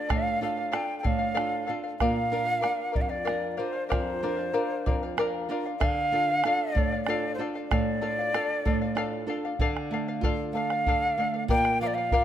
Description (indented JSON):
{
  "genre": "andean folk, Andean ensemble",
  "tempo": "63 BPM (dotted quarters)",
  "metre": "6/8",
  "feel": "straight",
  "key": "D minor",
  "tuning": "A4 = 442 Hz",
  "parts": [
    { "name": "hollow quena", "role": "melody", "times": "0.0-12.2 s", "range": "C5 to G5", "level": "-28 LUFS", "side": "equal", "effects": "none" },
    { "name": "charango", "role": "accompaniment", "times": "0.0-12.2 s", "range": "A4 to F5", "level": "-32 LUFS", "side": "left 5 dB", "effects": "none" },
    { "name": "flamenco guitar", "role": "accompaniment", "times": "0.0-12.2 s", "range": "F2 to Bb4", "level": "-32 LUFS", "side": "right 3 dB", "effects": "none" },
    { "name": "bombo", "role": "percussion", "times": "0.1-12.2 s", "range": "none", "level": "-30 LUFS", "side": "right 1 dB", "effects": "none" }
  ],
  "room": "light reverb",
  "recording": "close, detailed microphones",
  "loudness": "-25 LUFS",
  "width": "side -10 dB against mid",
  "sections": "0.0-9.6 A section; 9.6-12.2 B section",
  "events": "none",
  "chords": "0.0 Dm; 2.0 Bb; 5.8 Dm; 11.5 Bb",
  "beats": "| 0.10 1.05 | 2.00 2.95 | 3.90 4.85 | 5.80 6.75 | 7.70 8.65 | 9.60 10.54 | 11.49"
}